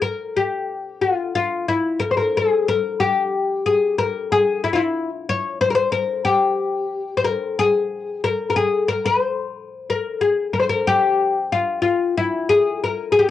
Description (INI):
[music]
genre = klezmer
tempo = 92 BPM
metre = 2/4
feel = straight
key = unclear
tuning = A4 = 438 Hz
[part]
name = oud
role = solo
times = 0.0-13.3 s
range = E4 to Db5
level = -18 LUFS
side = left 4 dB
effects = cassette tape
[sound]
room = moderate booth ambience, RT60 0.3 s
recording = home recording on cassette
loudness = -18 LUFS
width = side -12 dB against mid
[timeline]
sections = 0.0-10.5 A section; 10.5-13.3 A section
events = none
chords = none